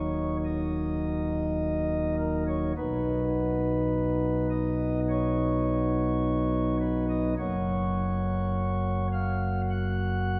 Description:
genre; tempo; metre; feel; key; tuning
classical, chorale-style piece for pipe organ; 52 BPM; 4/4; straight; unclear; A4 = 439 Hz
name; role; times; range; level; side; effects
pipe organ, flutes; solo; 0.0-10.4 s; D#1 to F#5; -28 LUFS; equal; none
room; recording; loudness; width
wet church reverb, RT60 4.0 s; none; -28 LUFS; mono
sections
0.0-10.4 A section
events
none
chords
0.0 D#m; 2.8 B; 7.4 F#

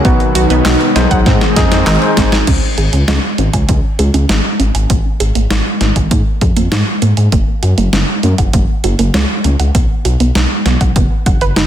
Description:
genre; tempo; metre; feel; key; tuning
synthwave; 99 BPM; 4/4; straight; unclear; A4 = 444 Hz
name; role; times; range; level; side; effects
lush unison pad; sustained chords; 0.0-2.5 s; Cb3 to C4; -18 LUFS; equal; chorus, sidechain pumping
wide unison pluck; arpeggios; 0.0-11.7 s; Bb3 to Ab5; -20 LUFS; right 2 dB; cassette tape, ping-pong delay
clean 12-bit digital drum machine; drums; 0.0-11.7 s; crash cymbal, handclaps, hi-hat, snare drum; -17 LUFS; right 1 dB; none
overdriven tine electric piano; stabs; 0.1-2.4 s; Eb4 to Eb5; -18 LUFS; left 3 dB; fast tremolo, ping-pong delay
dark detuned saw bass; bass; 0.1-11.7 s; Gb1 to Ab2; -14 LUFS; equal; tube saturation, sidechain pumping
electronic kick drum; drums; 0.1-11.4 s; none; -14 LUFS; equal; none
room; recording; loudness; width
light reverb; dense, heavily limited modern master; -10 LUFS; side -11 dB against mid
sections
0.0-2.5 A section; 2.5-11.7 B section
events
drum fill 1.3-2.5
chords
0.1 Cb; 1.3 Ab; 2.5 Dbsus2; 4.9 Absus2; 7.3 Gb; 9.7 Cb

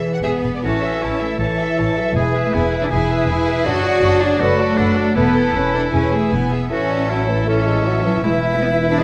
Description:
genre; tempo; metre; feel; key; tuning
classical; 158 BPM; 4/4; rubato; A major; A4 = 440 Hz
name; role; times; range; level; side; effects
warm symphonic violin section; second line; 0.0-9.0 s; F#4 to F#5; -30 LUFS; equal; none
mellow French horn section; sustained chords; 0.0-9.0 s; E4 to D5; -30 LUFS; equal; none
rich symphonic cello section; bass; 0.0-9.0 s; E3 to F#4; -24 LUFS; equal; none
warm symphonic violin section; melody; 0.2-9.0 s; G#4 to A5; -31 LUFS; equal; none
rich symphonic viola section; accompaniment; 0.2-9.0 s; D4 to B4; -30 LUFS; equal; none
clear studio double bass section; bass; 0.2-9.0 s; E1 to A1; -24 LUFS; equal; none
bright oboe; second line; 0.6-9.0 s; C#4 to A4; -27 LUFS; equal; none
mellow hollow concert flute; second line; 0.6-9.0 s; C#5 to A5; -28 LUFS; equal; none
mellow bassoon; accompaniment; 0.6-9.0 s; E3 to A3; -26 LUFS; equal; none
room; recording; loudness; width
wet recital hall reverb, RT60 1.4 s; none; -18 LUFS; mono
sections
0.6-9.0 A section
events
none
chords
0.0 E; 0.6 A; 2.2 E; 3.7 D/F#; 4.4 Bm7/F#; 5.2 Esus4; 5.9 E; 6.7 A; 8.2 E5

